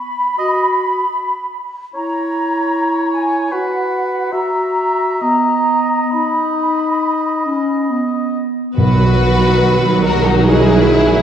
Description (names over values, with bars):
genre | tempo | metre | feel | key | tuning
classical, slow romantic movement for symphony orchestra | 65-77 BPM | 4/4 | rubato | B major | A4 = 441 Hz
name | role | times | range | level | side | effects
mellow large flute ensemble | second line | 0.0-7.9 s | F#5 to B5 | -18 LUFS | equal | none
clear oboe | second line | 0.4-8.4 s | B4 to E5 | -22 LUFS | equal | none
mellow clarinet | second line | 0.4-8.8 s | B3 to F#4 | -20 LUFS | equal | none
warm symphonic violin section | melody | 8.8-11.2 s | D#4 to F#4 | -18 LUFS | left 4 dB | none
warm symphonic violin section | second line | 8.8-11.2 s | F#4 to B4 | -17 LUFS | left 1 dB | none
rich symphonic viola section | accompaniment | 8.8-11.2 s | D#3 to F#3 | -16 LUFS | right 2 dB | none
rich symphonic double bass section | bass | 8.8-11.2 s | B1 | -16 LUFS | right 3 dB | none
timpani | percussion | 8.8-10.0 s | B2 | -16 LUFS | right 2 dB | none
warm symphonic cello section | bass | 10.5-11.2 s | D#4 to E4 | -18 LUFS | right 2 dB | none
room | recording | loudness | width
wet scoring stage reverb, RT60 1.6 s | heard from further back in the room | -13 LUFS | side -9 dB against mid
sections
0.0-8.8 A section; 8.8-11.2 A section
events
none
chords
0.0 B5; 1.9 A#m7b5/E; 3.5 B5/F#; 4.3 F#7; 5.2 B